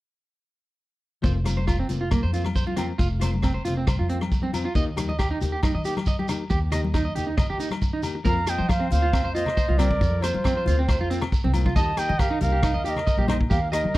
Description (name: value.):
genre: highlife guitar band.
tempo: 137 BPM.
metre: 4/4.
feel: straight.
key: unclear.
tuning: A4 = 440 Hz.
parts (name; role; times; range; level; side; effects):
nylon-string guitar; accompaniment; 1.2-13.9 s; Eb3 to G4; -32 LUFS; left 5 dB; none.
electric guitar at the edge of break-up; arpeggios; 1.2-14.0 s; Bb3 to Eb5; -30 LUFS; right 3 dB; vibrato effect, slapback echo.
upright bass; bass; 1.2-14.0 s; F1 to F3; -26 LUFS; equal; none.
vintage drum kit; drums; 1.2-14.0 s; hi-hat, kick drum, rim click; -26 LUFS; equal; none.
shekere; percussion; 1.2-14.0 s; none; -36 LUFS; right 2 dB; none.
agogo bells; percussion; 1.5-14.0 s; none; -38 LUFS; left 5 dB; none.
congas; percussion; 1.5-13.9 s; none; -32 LUFS; left 2 dB; none.
bright reedy bansuri; melody; 8.3-14.0 s; C5 to Bb5; -27 LUFS; right 2 dB; none.
clear trumpet; second line; 8.3-14.0 s; F4 to F5; -36 LUFS; left 6 dB; none.
room: small room ambience.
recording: dry, close 1970s-style studio recording.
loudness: -21 LUFS.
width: side -17 dB against mid.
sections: 1.2-8.3 A section; 8.3-14.0 B section.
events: none.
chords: 1.2 Fsus4; 4.8 Eb; 8.3 Fsus4; 11.8 Eb.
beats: | 1.24 1.68 2.12 2.56 | 2.99 3.43 3.87 4.31 | 4.75 5.19 5.63 6.07 | 6.50 6.94 7.38 7.82 | 8.26 8.70 9.13 9.57 | 10.01 10.45 10.88 11.32 | 11.76 12.20 12.64 13.07 | 13.51 13.95.